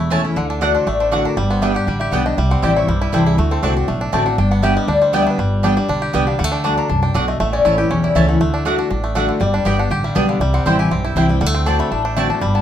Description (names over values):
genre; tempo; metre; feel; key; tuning
bluegrass; 239 BPM; 4/4; straight; G major; A4 = 438 Hz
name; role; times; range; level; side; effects
bluegrass banjo; melody; 0.0-12.6 s; D3 to G4; -23 LUFS; right 2 dB; none
picked steel-string acoustic guitar; accompaniment; 0.0-12.6 s; E2 to G4; -20 LUFS; left 2 dB; none
upright bass; bass; 0.0-12.6 s; E1 to D2; -20 LUFS; equal; none
mandolin; stabs; 0.1-12.3 s; A3 to A5; -22 LUFS; right 4 dB; none
lap resonator guitar; second line; 0.4-12.6 s; F#4 to B5; -22 LUFS; left 4 dB; none
room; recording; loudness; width
moderate studio reverb, RT60 0.6 s; none; -14 LUFS; side -10 dB against mid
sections
0.0-5.4 A section; 5.4-12.6 A section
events
resonator guitar played with a steel bar solo 0.0-12.6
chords
0.4 D; 1.4 G; 2.4 C; 3.4 D7; 4.4 G; 6.4 D; 7.4 A; 8.4 D; 9.4 G; 10.4 C; 11.4 D7